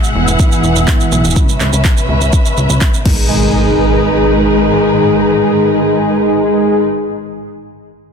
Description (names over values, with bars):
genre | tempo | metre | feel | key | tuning
melodic techno | 124 BPM | 4/4 | straight | G# minor | A4 = 438 Hz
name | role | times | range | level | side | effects
muted symphonic string section | sustained chords | 0.0-6.8 s | C#3 to F#5 | -18 LUFS | left 1 dB | sidechain pumping
swarming drone | drone | 0.0-6.8 s | G#2 to D#3 | -21 LUFS | left 2 dB | built-in reverb, sidechain pumping
deep house drum kit | drums | 0.0-3.2 s | crash cymbal, handclaps, shaker | -20 LUFS | right 3 dB | none
brassy analog pad | stabs | 0.2-6.8 s | C#3 to G#4 | -14 LUFS | equal | chorus, sidechain pumping, ping-pong delay
plucky analog bass | bass | 0.2-4.7 s | E1 to C#2 | -15 LUFS | equal | sidechain pumping
electronic kick drum | drums | 0.4-3.2 s | none | -12 LUFS | equal | none
impact | sound effects | 3.1-6.8 s | none | -22 LUFS | equal | none
room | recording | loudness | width
moderate scoring stage reverb, RT60 2.0 s | dense, heavily limited modern master | -10 LUFS | side -6 dB against mid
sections
0.0-3.3 A section; 3.3-7.2 B section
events
filter sweep on analog synth pad 0.0-3.3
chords
0.0 Eadd9; 1.4 C#m7; 3.1 G#madd9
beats
0.40 0.88 | 1.36 1.85 2.33 2.81 | 3.30 3.78 4.27 4.75 | 5.23 5.72 6.20 6.68